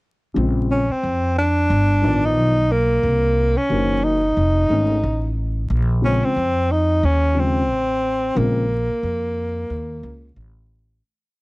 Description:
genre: hip hop, jazz-hop.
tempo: 90 BPM.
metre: 4/4.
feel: swing 59% on 16ths.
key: Bb minor.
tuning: A4 = 440 Hz.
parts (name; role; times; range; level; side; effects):
dark concert grand piano; accompaniment; 0.3-8.6 s; Db3 to D5; -23 LUFS; left 2 dB; none.
upright bass; bass; 0.4-11.0 s; F1 to F2; -21 LUFS; equal; none.
mellow tenor saxophone; melody; 0.7-10.4 s; Bb3 to Eb4; -20 LUFS; equal; none.
room: small room ambience.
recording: dry, close 1970s-style studio recording, vinyl crackle.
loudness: -17 LUFS.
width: side -22 dB against mid.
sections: 0.4-11.0 A section.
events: fade-out 8.4-11.0.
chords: 0.4 Bbm9; 1.7 G7b13; 3.0 Cm7b5; 4.4 F7alt; 5.7 Bbm9.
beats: | 0.36 1.03 1.70 2.36 | 3.03 3.70 4.36 5.03 | 5.70 6.36 7.03 7.70 | 8.36 9.03 9.70 10.36.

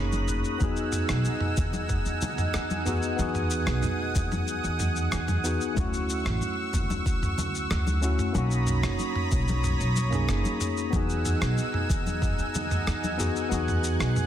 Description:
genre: sunset chillout.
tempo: 93 BPM.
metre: 4/4.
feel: straight.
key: E lydian.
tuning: A4 = 440 Hz.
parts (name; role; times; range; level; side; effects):
tine electric piano; accompaniment; 0.0-14.3 s; A3 to G#4; -32 LUFS; moving between left 6 dB and right 5 dB; auto-pan, ping-pong delay.
lush unison pad; sustained chords; 0.0-14.3 s; D#4 to F#6; -32 LUFS; right 1 dB; chorus.
upright bass; bass; 0.0-14.1 s; F#1 to E2; -28 LUFS; equal; none.
twinkling granular texture; texture; 0.0-0.6 s; F#6; -43 LUFS; right 3 dB; built-in reverb.
dusty soul sampler-style drum kit; drums; 0.1-14.3 s; rim click, shaker, toms; -31 LUFS; equal; soft clipping on snare.
congas; percussion; 0.1-14.3 s; none; -36 LUFS; left 2 dB; none.
electronic kick drum; drums; 0.6-12.4 s; none; -29 LUFS; equal; none.
room: light reverb.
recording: dense, heavily limited modern master.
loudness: -24 LUFS.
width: side -10 dB against mid.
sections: 0.6-14.3 A section.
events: none.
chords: 0.0 Bmaj9; 0.6 Emaj9; 5.8 Dmaj9; 8.4 Bmaj9; 10.9 Emaj9.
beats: | 0.61 1.25 1.90 2.55 | 3.19 3.84 4.48 5.13 | 5.77 6.42 7.06 7.71 | 8.35 9.00 9.64 10.29 | 10.93 11.58 12.22 12.87 | 13.51 14.16.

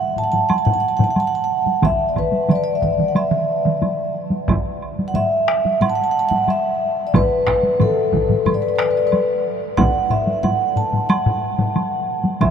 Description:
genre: japanese traditional, taiko drum ensemble.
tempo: 91 BPM.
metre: 4/4.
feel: straight.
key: E suspended pentatonic.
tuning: A4 = 441 Hz.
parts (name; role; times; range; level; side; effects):
vibraphone with soft mallets; melody; 0.0-12.5 s; A4 to A5; -18 LUFS; equal; none.
taiko ensemble; percussion; 0.2-1.1, 5.1-11.7 s; none; -24 LUFS; left 3 dB; none.
taiko ensemble; percussion; 0.3-12.5 s; none; -24 LUFS; equal; none.
woodblock; percussion; 0.5-12.5 s; none; -31 LUFS; right 4 dB; none.
taiko ensemble; percussion; 1.8-12.5 s; none; -25 LUFS; right 5 dB; none.
taiko ensemble; percussion; 1.8-12.5 s; none; -24 LUFS; right 1 dB; none.
room: wet huge ambient reverb, RT60 7.7 s.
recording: in a vast, echoing space.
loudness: -16 LUFS.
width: side -8 dB against mid.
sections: 0.0-12.5 A section.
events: none.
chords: none.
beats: 0.50 1.17 | 1.83 2.50 3.16 3.82 | 4.49 5.15 5.81 6.48 | 7.14 7.80 8.46 9.12 | 9.78 10.44 11.10 11.76 | 12.41.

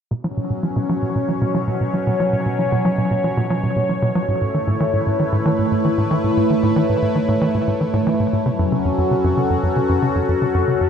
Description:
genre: ambient.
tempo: 115 BPM.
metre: 4/4.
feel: straight.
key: unclear.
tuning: A4 = 441 Hz.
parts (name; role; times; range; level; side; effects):
phased analog pad; sustained chords; 0.1-10.9 s; B2 to C#5; -19 LUFS; equal; phaser, chorus.
tight sequencer bass; riff; 0.1-10.9 s; F#2 to F#3; -20 LUFS; equal; lush chorus, ping-pong delay.
room: wet plate reverb, RT60 3.4 s.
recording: none.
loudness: -17 LUFS.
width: side -7 dB against mid.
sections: 0.1-10.9 A section.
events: none.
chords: 0.1 Bsus2; 4.3 A; 8.5 F#m.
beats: | 0.11 0.63 1.15 1.67 | 2.20 2.72 3.24 3.76 | 4.28 4.80 5.33 5.85 | 6.37 6.89 7.41 7.93 | 8.46 8.98 9.50 10.02 | 10.54.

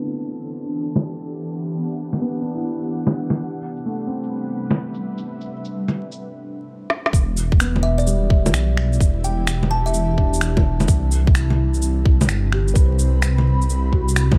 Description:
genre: future garage.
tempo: 128 BPM.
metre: 4/4.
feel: swing 66% on 16ths.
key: E minor.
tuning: A4 = 439 Hz.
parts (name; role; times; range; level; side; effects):
felt-muted upright piano; accompaniment; 0.0-14.4 s; G3 to C5; -32 LUFS; equal; sidechain pumping, tape echo.
ethereal airy pad; sustained chords; 0.0-14.4 s; C3 to B5; -31 LUFS; equal; ensemble chorus, built-in reverb, phaser, sidechain pumping.
electronic shaker, bongos, snare drum and finger snaps; drums; 0.0-14.4 s; none; -25 LUFS; equal; low-pass filter on perc, studio reverb, low-pass filter on snare.
dark detuned saw bass; bass; 7.1-14.4 s; E1 to C2; -21 LUFS; equal; sidechain pumping.
electronic kick drum; drums; 7.1-14.4 s; none; -18 LUFS; equal; studio reverb.
kalimba; melody; 7.8-10.3 s; D5 to A5; -30 LUFS; equal; dub echo.
room: little or no reverb.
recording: dark, warm production, vinyl crackle, low-pass filter.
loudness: -20 LUFS.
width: mono.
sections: 0.0-7.1 A section; 7.1-14.4 B section.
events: filter sweep 0.0-7.1; drum fill 6.9.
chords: 0.0 Em7; 3.4 Cmaj7; 7.1 Em7; 10.9 Cmaj7.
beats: 0.10 0.57 1.04 | 1.51 1.98 2.45 2.92 | 3.38 3.85 4.32 4.79 | 5.26 5.73 6.20 6.67 | 7.13 7.60 8.07 8.54 | 9.01 9.48 9.95 10.41 | 10.88 11.35 11.82 12.29 | 12.76 13.23 13.70 14.16.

